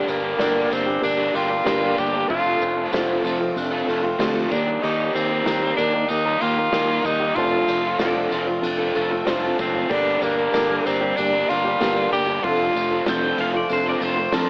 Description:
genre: folk rock and heartland rock.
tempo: 95 BPM.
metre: 4/4.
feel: straight.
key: unclear.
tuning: A4 = 440 Hz.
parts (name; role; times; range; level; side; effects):
bright tenor saxophone; melody; 0.0-13.1 s; Bb3 to G4; -25 LUFS; equal; cassette tape, analog delay.
mellow reed electric piano; accompaniment; 0.0-14.5 s; Bb3 to A5; -30 LUFS; equal; fast tremolo, cassette tape.
picked swing-style acoustic guitar; accompaniment; 0.0-14.5 s; F2 to G4; -28 LUFS; equal; cassette tape.
crunchy overdriven guitar; riff; 0.0-14.5 s; G2 to Bb4; -30 LUFS; equal; cassette tape.
fingered electric bass; bass; 0.1-14.5 s; F1 to F2; -34 LUFS; equal; none.
soft brush drum kit; drums; 0.1-14.5 s; crash cymbal, kick drum, ride cymbal, snare drum; -32 LUFS; equal; cassette tape.
tambourine; percussion; 0.1-14.5 s; none; -44 LUFS; equal; none.
pedal steel guitar; second line; 8.0-14.5 s; F4 to G5; -29 LUFS; equal; cassette tape, analog delay.
room: light reverb, small room ambience.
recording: home recording on cassette, AM radio sound.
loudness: -21 LUFS.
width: mono.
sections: 0.0-14.5 A section.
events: none.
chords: 0.0 Gm; 2.3 F6; 4.5 Eb; 7.4 F6; 9.9 Gm; 12.4 F6.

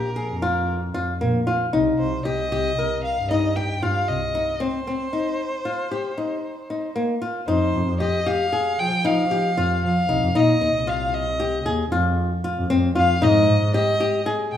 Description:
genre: contemporary instrumental, chamber music in an uneven meter.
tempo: 230 BPM (eighths).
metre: 11/8.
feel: straight.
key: unclear.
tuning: A4 = 444 Hz.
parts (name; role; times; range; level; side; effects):
warm violin; melody; 0.0-14.6 s; Bb4 to G5; -25 LUFS; left 1 dB; none.
flamenco guitar; arpeggios; 0.0-14.6 s; Bb3 to Bb4; -23 LUFS; left 2 dB; none.
dark double bass; bass; 0.0-14.6 s; Bb1 to F3; -24 LUFS; equal; none.
room: moderate recital hall reverb, RT60 1.5 s.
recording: studio ambience.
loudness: -20 LUFS.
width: side -10 dB against mid.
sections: 0.0-7.5 A section; 7.5-14.6 B section.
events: break 4.6-7.5.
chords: 0.0 Bb5; 1.7 Cm7; 7.5 F7(no3); 13.2 Ab5.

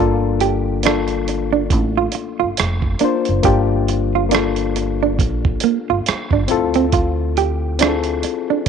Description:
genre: R&B, neo-soul.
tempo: 69 BPM.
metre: 4/4.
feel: swing 59% on 16ths.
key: G dorian.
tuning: A4 = 440 Hz.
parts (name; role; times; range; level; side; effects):
hollow-body jazz guitar; second line; 0.0-8.6 s; Bb3 to G4; -20 LUFS; right 12 dB; none.
reed electric piano; accompaniment; 0.0-8.7 s; Bb3 to C5; -20 LUFS; left 10 dB; none.
upright bass; bass; 0.0-8.2 s; F1 to D2; -22 LUFS; right 1 dB; none.
dusty soul sampler-style drum kit; drums; 0.4-8.7 s; hi-hat, kick drum, rim click; -20 LUFS; right 4 dB; none.
room: moderate spring reverb, RT60 2.4 s.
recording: 1960s-style stereo with parts hard left and right.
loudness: -16 LUFS.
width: side -7 dB against mid.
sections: 0.0-8.7 A section.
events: none.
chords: 0.0 Gm9; 6.5 Dm9.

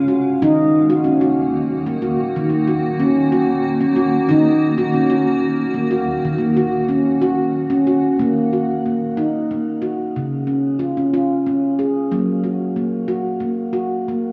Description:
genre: world meditative.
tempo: 62 BPM (dotted quarters).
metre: 6/8.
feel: straight.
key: Eb minor.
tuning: A4 = 439 Hz.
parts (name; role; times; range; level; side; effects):
granular cloud pad; sustained chords; 0.0-8.2 s; Db3 to F5; -27 LUFS; equal; built-in reverb, shimmer reverb.
handpan; arpeggios; 0.0-14.3 s; Db3 to Ab4; -19 LUFS; equal; shimmer reverb.
room: wet echo chamber reverb, RT60 2.1 s.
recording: small room ambience.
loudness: -18 LUFS.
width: mono.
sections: 0.0-8.2 A section; 8.2-14.3 B section.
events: none.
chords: 0.4 Ebm; 10.2 Db; 12.1 Gb.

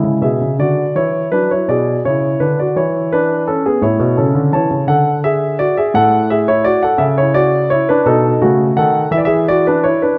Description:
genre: classical, baroque-style suite movement for grand piano.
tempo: 56 BPM (dotted quarters).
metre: 6/8.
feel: rubato.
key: A major.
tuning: A4 = 440 Hz.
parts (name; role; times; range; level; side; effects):
warm concert grand piano; solo; 0.0-10.2 s; A2 to A5; -14 LUFS; equal; none.
room: moderate recital hall reverb, RT60 1.5 s.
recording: close, detailed microphones.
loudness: -14 LUFS.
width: mono.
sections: 0.0-10.2 A section.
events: none.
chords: 0.0 C#m; 0.6 D; 1.7 E7/B; 3.8 A; 4.9 D; 5.9 A; 8.1 B7; 9.1 E.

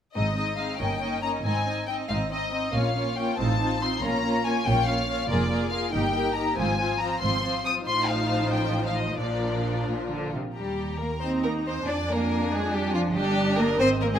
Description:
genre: quick classical-period movement for string orchestra.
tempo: 93 BPM (dotted quarters).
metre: 6/8.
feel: rubato.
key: Ab major, Eb major from 5.3 s.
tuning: A4 = 441 Hz.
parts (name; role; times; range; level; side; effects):
rich studio violin section; melody; 0.1-14.2 s; D5 to Eb6; -29 LUFS; left 4 dB; none.
rich chamber violin section; second line; 0.1-14.2 s; Eb4 to Eb5; -30 LUFS; left 2 dB; none.
rich chamber cello section; bass; 0.1-14.2 s; F2 to D4; -30 LUFS; right 2 dB; none.
warm chamber double bass section; bass; 0.1-14.2 s; F1 to F2; -31 LUFS; right 2 dB; none.
warm studio viola section; accompaniment; 0.2-14.2 s; F3 to F4; -30 LUFS; right 1 dB; none.
room: moderate recital hall reverb, RT60 1.7 s.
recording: close, detailed microphones.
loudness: -23 LUFS.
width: side -9 dB against mid.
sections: 0.2-10.6 A section; 10.6-14.2 B section.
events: none.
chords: 0.2 Ab; 0.8 Eb7/G; 1.5 Ab; 2.7 Bbm; 3.4 F7/A; 4.0 Bbm; 5.3 Bb7/F; 5.9 Eb/G; 6.6 Fm/Ab; 7.9 F7/A; 9.2 Bb; 10.6 Eb; 11.9 Ddim/F; 13.1 Eb/G.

